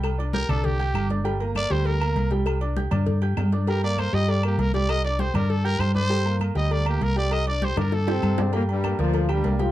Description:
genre	latin, salsa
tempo	198 BPM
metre	4/4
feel	straight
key	G minor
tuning	A4 = 438 Hz
part	clear grand piano	accompaniment	0.0-9.7 s	G3 to G6	-30 LUFS	right 3 dB	none
part	hollow-body short-scale fingered electric bass	bass	0.0-9.7 s	G1 to G2	-24 LUFS	equal	none
part	agogo bells and timbales	percussion	0.0-9.6 s	none	-37 LUFS	right 7 dB	none
part	claves	percussion	0.0-9.4 s	none	-40 LUFS	left 9 dB	none
part	congas	percussion	0.0-9.7 s	none	-31 LUFS	equal	none
part	cowbell and bongos	percussion	0.0-9.7 s	none	-35 LUFS	left 6 dB	none
part	growling trumpet	melody	0.3-8.5 s	G4 to Eb5	-28 LUFS	equal	none
part	brilliant trombone section	melody	8.1-9.7 s	G2 to F4	-26 LUFS	left 2 dB	none
room	light reverb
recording	dark, warm production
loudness	-21 LUFS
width	side -14 dB against mid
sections	0.0-8.5 A section; 8.5-9.7 B section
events	trumpet solo 0.0-8.5; drum fill 7.8-8.5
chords	0.0 Csus2; 1.3 Gm; 2.5 Csus2; 3.7 Gm; 4.9 Csus2; 6.1 Gm; 7.3 Csus2; 8.5 Gm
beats	| 0.04 0.34 0.65 0.95 | 1.25 1.56 1.86 2.17 | 2.47 2.77 3.07 3.38 | 3.68 3.98 4.29 4.59 | 4.89 5.20 5.50 5.80 | 6.11 6.41 6.71 7.01 | 7.32 7.62 7.92 8.23 | 8.53 8.83 9.13 9.44

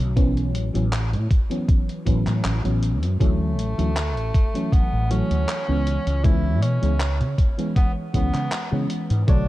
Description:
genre	vaporwave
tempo	79 BPM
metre	4/4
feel	swing 53% on 16ths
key	unclear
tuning	A4 = 442 Hz
part	mellow FM electric piano	accompaniment	0.0-9.5 s	D3 to C#5	-26 LUFS	equal	analog chorus
part	mellow fretless electric bass	bass	0.0-9.5 s	A1 to C#3	-22 LUFS	equal	ensemble chorus
part	electronic kick drum	drums	0.2-9.4 s	none	-19 LUFS	equal	none
part	gated 80s digital drum machine	drums	0.2-9.4 s	handclaps, hi-hat	-33 LUFS	equal	gated reverb
part	clear tenor saxophone	melody	3.2-9.5 s	A3 to E4	-30 LUFS	right 1 dB	vintage 12-bit sampler grit, tape echo
room	little or no reverb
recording	dark, warm production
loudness	-19 LUFS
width	side -16 dB against mid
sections	0.0-9.5 A section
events	none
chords	0.2 A69; 3.2 Dmaj7; 5.9 C#m7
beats	| 0.17 0.93 1.69 2.44 | 3.20 3.96 4.72 5.48 | 6.24 7.00 7.76 8.52 | 9.28

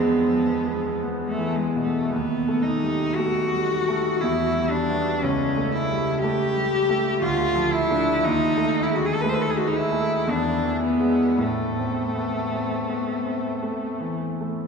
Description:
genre	classical, romantic duo for cello and grand piano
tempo	58 BPM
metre	3/4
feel	uneven beats, rubato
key	unclear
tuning	A4 = 440 Hz
part	clear cello	melody	0.0-14.2 s	G#3 to B#4	-23 LUFS	equal	none
part	bright concert grand piano	accompaniment	0.0-14.7 s	C#2 to D4	-24 LUFS	equal	none
room	wet cathedral reverb, RT60 6.4 s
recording	recorded in a church or concert hall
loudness	-21 LUFS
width	side -5 dB against mid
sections	0.0-14.7 A section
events	none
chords	0.0 E; 2.1 B7b13/D#; 4.2 Em; 5.2 A7/C#; 7.2 Dm; 8.2 G#5/D#; 10.3 E7; 11.4 Am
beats	1.02 | 2.11 3.17 4.21 | 5.23 6.23 7.23 | 8.23 9.23 10.26 | 11.38 12.52 13.63

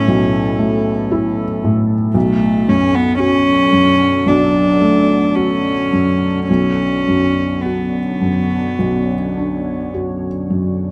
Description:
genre	neoclassical piano and strings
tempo	52-58 BPM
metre	4/4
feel	rubato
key	B minor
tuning	A4 = 440 Hz
part	rich cello	second line	0.0-9.9 s	A3 to D4	-18 LUFS	equal	none
part	felt-muted upright piano	accompaniment	0.0-10.9 s	B1 to F#4	-19 LUFS	equal	none
part	deep dark ambient pad	sustained chords	0.0-10.9 s	D3 to C#5	-28 LUFS	equal	chorus, built-in reverb
room	light reverb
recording	close, detailed microphones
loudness	-16 LUFS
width	mono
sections	0.0-10.9 A section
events	none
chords	0.0 A/B; 2.1 D/B; 6.5 Bmadd9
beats	0.07 1.11 | 2.15 3.20 4.27 5.36 | 6.48 7.62 8.78 9.92

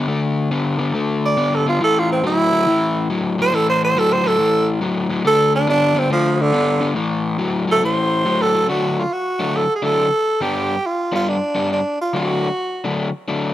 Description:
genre	blues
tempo	140 BPM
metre	4/4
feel	swing 66% on 8ths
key	D major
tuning	A4 = 438 Hz
part	overdriven semi-hollow guitar	riff	0.0-13.5 s	G2 to D4	-20 LUFS	left 3 dB	none
part	growling tenor saxophone	melody	1.3-13.0 s	D3 to D5	-17 LUFS	right 2 dB	none
room	light reverb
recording	none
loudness	-16 LUFS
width	side -13 dB against mid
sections	0.0-8.7 A section; 8.7-13.5 B section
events	tenor saxophone solo 0.0-8.7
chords	0.0 D5; 1.8 A5; 5.2 D5; 7.0 A5; 8.7 D; 10.4 G; 12.1 D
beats	| 0.09 0.52 0.95 1.38 | 1.81 2.24 2.67 3.10 | 3.53 3.96 4.39 4.82 | 5.25 5.68 6.11 6.54 | 6.96 7.39 7.82 8.25 | 8.69 9.12 9.55 9.98 | 10.41 10.84 11.27 11.70 | 12.13 12.56 13.00 13.43

